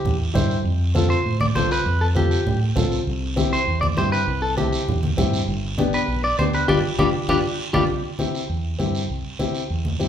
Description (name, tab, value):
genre	latin, cumbia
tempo	199 BPM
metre	4/4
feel	straight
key	C major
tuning	A4 = 438 Hz
part	clean electric guitar	melody	0.0-7.8 s	G4 to D5	-23 LUFS	equal	spring reverb
part	fingered electric bass	bass	0.0-10.1 s	G1 to A2	-24 LUFS	right 1 dB	none
part	congas	percussion	0.1-10.1 s	none	-25 LUFS	equal	none
part	guiro	percussion	0.1-10.1 s	none	-34 LUFS	right 4 dB	none
part	clear upright piano	accompaniment	0.3-10.1 s	B3 to C5	-26 LUFS	left 3 dB	none
room	wet large studio reverb, RT60 0.9 s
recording	band playing live in one room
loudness	-19 LUFS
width	side -9 dB against mid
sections	0.0-7.9 A section; 7.9-10.1 B section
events	band accent 6.7-7.9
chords	0.0 C; 0.7 F; 3.1 C; 5.5 G7; 7.9 C